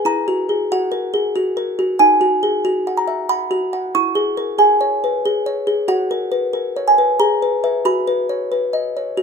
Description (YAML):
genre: classical, lullaby for music box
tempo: 92 BPM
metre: 3/4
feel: straight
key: B major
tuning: A4 = 440 Hz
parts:
  - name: music box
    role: solo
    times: 0.0-9.2 s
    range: D#4 to C#6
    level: -15 LUFS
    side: equal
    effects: none
room: light reverb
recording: minimal, uncompressed stereo recording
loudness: -15 LUFS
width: side -5 dB against mid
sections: 0.0-9.2 A section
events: none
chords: 0.1 F#7/E; 2.0 B/D#; 3.9 C#m/E; 5.9 F#; 7.2 E/G#; 7.9 B/F#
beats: | 0.06 0.70 1.35 | 2.00 2.64 3.29 | 3.94 4.59 5.24 | 5.89 6.54 7.19 | 7.85 8.52 9.18